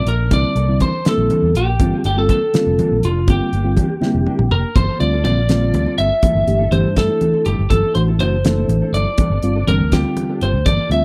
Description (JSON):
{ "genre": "electric jazz fusion", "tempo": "81 BPM (dotted quarters)", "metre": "6/8", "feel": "straight", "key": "G dorian", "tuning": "A4 = 440 Hz", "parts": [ { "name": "lightly driven lead guitar", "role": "melody", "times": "0.0-11.0 s", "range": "F4 to E5", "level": "-22 LUFS", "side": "equal", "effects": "none" }, { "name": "mellow reed electric piano", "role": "accompaniment", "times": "0.0-11.0 s", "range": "D3 to A4", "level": "-23 LUFS", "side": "equal", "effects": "none" }, { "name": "fingered electric bass", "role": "bass", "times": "0.0-11.0 s", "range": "F1 to G2", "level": "-20 LUFS", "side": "equal", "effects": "none" }, { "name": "mellow electric guitar", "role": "stabs", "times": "0.1-10.9 s", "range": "E3 to A4", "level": "-31 LUFS", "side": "equal", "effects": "ensemble chorus" }, { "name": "damped 70s drum kit", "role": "drums", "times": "0.1-11.0 s", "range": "hi-hat, kick drum, snare drum, toms", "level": "-20 LUFS", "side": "equal", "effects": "none" }, { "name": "congas", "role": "percussion", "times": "0.1-11.0 s", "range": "none", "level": "-26 LUFS", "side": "equal", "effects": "none" } ], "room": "small room ambience", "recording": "dry, close 1970s-style studio recording", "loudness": "-16 LUFS", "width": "mono", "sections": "0.0-4.8 A section; 4.8-11.0 B section", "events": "drum fill 4.0-4.8", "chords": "0.3 C13; 1.8 Gm9; 3.3 Gm7; 4.8 Gm11; 6.2 Am7/G; 7.7 D9; 9.2 F69/G" }